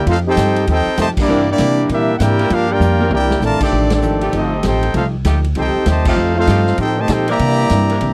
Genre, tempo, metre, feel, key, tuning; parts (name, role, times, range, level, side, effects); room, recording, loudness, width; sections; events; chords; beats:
jazz, big band swing; 196 BPM; 4/4; swing 63% on 8ths; A4 = 440 Hz
bright trumpet section; melody; 0.0-8.1 s; Bb3 to Bb5; -21 LUFS; equal
warm trombone section; second line; 0.0-8.1 s; C3 to G4; -21 LUFS; equal
upright bass; bass; 0.0-8.1 s; G1 to C3; -20 LUFS; equal
vintage hollow-body jazz guitar; accompaniment; 0.1-8.1 s; G2 to G4; -26 LUFS; equal
swinging big-band drum kit; drums; 0.1-8.1 s; crash cymbal, hi-hat, kick drum, ride cymbal, snare drum, toms; -26 LUFS; equal
edgy saxophone section; sustained chords; 1.3-8.0 s; E3 to Bb4; -27 LUFS; equal
light reverb; dry, close 1970s-style studio recording; -15 LUFS; mono
0.0-8.1 A section
band accent 1.1, 3.9, 6.0; drum fill 2.8-3.4
0.1 F9; 1.3 C9; 2.5 Gm7; 3.1 C9; 3.7 F9; 7.4 C9
| 0.06 0.37 0.67 0.98 | 1.28 1.59 1.89 2.20 | 2.50 2.81 3.11 3.42 | 3.72 4.03 4.33 4.64 | 4.94 5.25 5.56 5.86 | 6.17 6.47 6.78 7.09 | 7.39 7.70 8.01